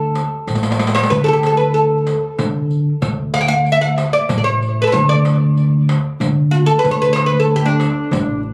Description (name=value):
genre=Arabic maqam ensemble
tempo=94 BPM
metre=3/4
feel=straight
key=D maqam rast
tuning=A4 = 440 Hz
part: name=oud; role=melody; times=0.0-8.4 s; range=D4 to G5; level=-19 LUFS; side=equal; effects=tape echo
part: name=upright bass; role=bass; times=0.0-8.5 s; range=A1 to D3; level=-20 LUFS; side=equal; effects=none
part: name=darbuka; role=percussion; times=0.2-8.5 s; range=none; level=-26 LUFS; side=equal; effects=none
part: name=riq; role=percussion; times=0.2-8.3 s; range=none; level=-26 LUFS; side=equal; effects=none
room=light reverb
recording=recorded on a phone in the room, club reverb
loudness=-16 LUFS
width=mono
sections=0.0-8.5 A section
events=drum fill 0.5-1.1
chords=none